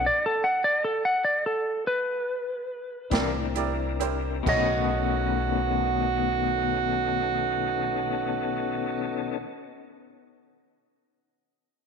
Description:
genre	slow blues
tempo	43-51 BPM (dotted quarters)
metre	12/8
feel	straight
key	B mixolydian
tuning	A4 = 441 Hz
part	clean lap steel guitar	melody	0.0-9.4 s	A4 to F#5	-25 LUFS	equal	none
part	tonewheel organ	sustained chords	0.0-9.4 s	B3 to Bb4	-33 LUFS	left 11 dB	slow rotary speaker, chorus vibrato
part	upright bass	bass	0.0-9.4 s	B1 to C2	-33 LUFS	left 1 dB	none
part	bright upright piano	accompaniment	3.1-9.4 s	D#4 to D5	-33 LUFS	right 11 dB	none
part	electric guitar through a small old amp	accompaniment	3.1-9.5 s	B2 to D4	-31 LUFS	left 13 dB	tremolo
part	swinging big-band drum kit	drums	3.1-4.7 s	crash cymbal, hi-hat, kick drum, snare drum	-32 LUFS	left 1 dB	none
part	overdriven harmonica	second line	4.5-9.4 s	F#4	-28 LUFS	right 10 dB	none
room	moderate echo chamber reverb, RT60 2.4 s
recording	1960s-style stereo with parts hard left and right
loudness	-24 LUFS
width	side -6 dB against mid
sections	0.0-4.5 A section; 4.5-10.0 B section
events	slowing down 0.0-4.5; stop 0.0-3.1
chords	0.0 B7(no3); 3.1 C9; 4.5 B9

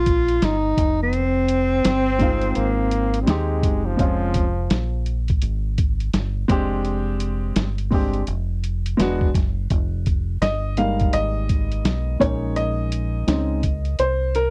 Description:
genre	hip hop, jazz-hop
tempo	84 BPM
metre	4/4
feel	swing 62% on 16ths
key	F minor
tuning	A4 = 439 Hz
part	breathy tenor saxophone	melody	0.0-3.6 s	C4 to F4	-23 LUFS	equal	slapback echo
part	deep dub fingered electric bass	bass	0.0-14.5 s	E1 to Eb2	-26 LUFS	equal	none
part	lo-fi sampler-style drum kit	drums	0.1-14.5 s	hi-hat, kick drum, snare drum	-25 LUFS	equal	none
part	clear trombone	second line	1.8-5.3 s	F3 to C4	-29 LUFS	equal	none
part	warm upright piano	accompaniment	2.2-14.5 s	G3 to F5	-26 LUFS	equal	none
room	little or no reverb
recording	dry, close 1970s-style studio recording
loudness	-21 LUFS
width	mono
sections	0.0-9.7 A section; 9.7-14.5 B section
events	break 0.0-1.1; upright piano solo 9.7-14.5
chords	0.0 F9sus4; 0.8 Fm9; 4.0 Bbm9/F; 6.5 Fm69; 9.0 E9; 9.7 Fm11; 12.2 Bbm11

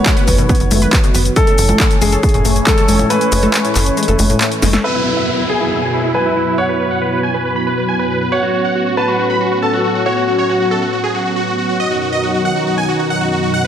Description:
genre	uplifting trance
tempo	138 BPM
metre	4/4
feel	straight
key	unclear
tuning	A4 = 441 Hz
part	clear concert grand piano	second line	0.0-11.7 s	F#4 to C#5	-19 LUFS	left 1 dB	tape echo
part	filtered supersaw swell	sustained chords	0.0-13.7 s	F#2 to G#5	-19 LUFS	equal	sidechain pumping
part	analog pluck	arpeggios	0.1-4.8 s	A2 to B4	-21 LUFS	left 3 dB	chorus, sidechain pumping, tape echo
part	electronic kick drum	drums	0.1-2.8 s	none	-14 LUFS	equal	overdrive
part	techno drum kit	drums	0.1-4.8 s	congas, handclaps, hi-hat, shaker, snare drum	-17 LUFS	equal	overdrive
part	tight sequencer bass	bass	0.3-4.8 s	F#1	-16 LUFS	equal	sidechain pumping
part	supersaw chords	melody	4.8-13.7 s	E4 to B5	-18 LUFS	right 2 dB	sidechain pumping, low-pass filter, tape echo
part	downlifter	sound effects	4.8-8.3 s	none	-23 LUFS	left 2 dB	none
room	light reverb, digital ambience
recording	none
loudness	-12 LUFS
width	side -9 dB against mid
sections	0.0-4.8 A section; 4.8-13.7 B section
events	kick drops out 3.1-4.8; drum fill 4.6; filter sweep on supersaw synth 4.8-13.7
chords	0.0 B/F#; 1.4 Amaj7/F#; 4.8 Eadd9/F#; 8.3 F#m; 11.8 B/F#

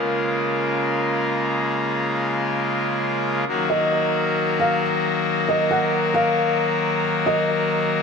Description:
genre	hip hop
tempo	free time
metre	none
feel	none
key	Eb minor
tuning	A4 = 440 Hz
part	pipe organ, trumpet	sustained chords	0.0-8.0 s	Db3 to Bb4	-20 LUFS	left 2 dB	low-pass filter
part	felt-muted upright piano	melody	3.7-8.0 s	Eb5 to Gb5	-23 LUFS	right 1 dB	tape echo
room	wet lush hall reverb, RT60 2.6 s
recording	none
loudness	-19 LUFS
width	side -5 dB against mid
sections	0.0-3.5 A section; 3.5-8.0 B section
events	none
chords	0.0 Bbm7; 3.5 Ebm

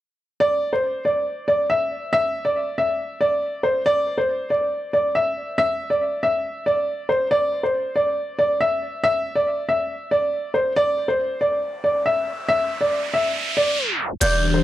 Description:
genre	hip hop, drill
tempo	139 BPM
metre	4/4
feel	half-time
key	unclear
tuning	A4 = 438 Hz
part	dark grand piano	melody	0.4-14.6 s	C5 to E5	-19 LUFS	equal	none
part	riser and downlifter	sound effects	12.0-14.6 s	none	-26 LUFS	right 2 dB	none
part	glassy synth bell	second line	14.2-14.6 s	G6	-23 LUFS	left 1 dB	chorus
part	dark analog pad	sustained chords	14.2-14.6 s	E3 to G4	-22 LUFS	left 3 dB	chorus
part	hard-hitting 808-style bass	bass	14.2-14.6 s	E1	-22 LUFS	equal	none
part	electronic hi-hat	drums	14.2-14.3 s	none	-23 LUFS	right 1 dB	none
room	light reverb, digital ambience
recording	dry, gritty hardware recording, tape stop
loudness	-19 LUFS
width	side -14 dB against mid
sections	0.4-14.2 A section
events	riser 12.0-14.2; tape stop 13.8-14.2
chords	none

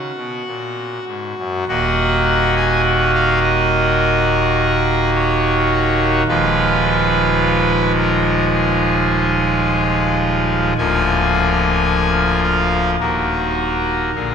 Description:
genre	classical, chorale-style piece for pipe organ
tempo	53 BPM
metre	4/4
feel	rubato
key	Eb minor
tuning	A4 = 440 Hz
part	pipe organ, trumpet	solo	0.0-14.3 s	D1 to Ab5	-14 LUFS	equal	none
room	wet cathedral reverb, RT60 5.2 s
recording	minimal, uncompressed stereo recording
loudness	-14 LUFS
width	side -7 dB against mid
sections	0.0-1.7 A section; 1.7-14.3 B section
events	none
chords	0.0 Ebm (rootless); 1.7 Ebm; 6.3 Fm7b5/Eb; 10.8 Bb7/D; 13.0 Ebm

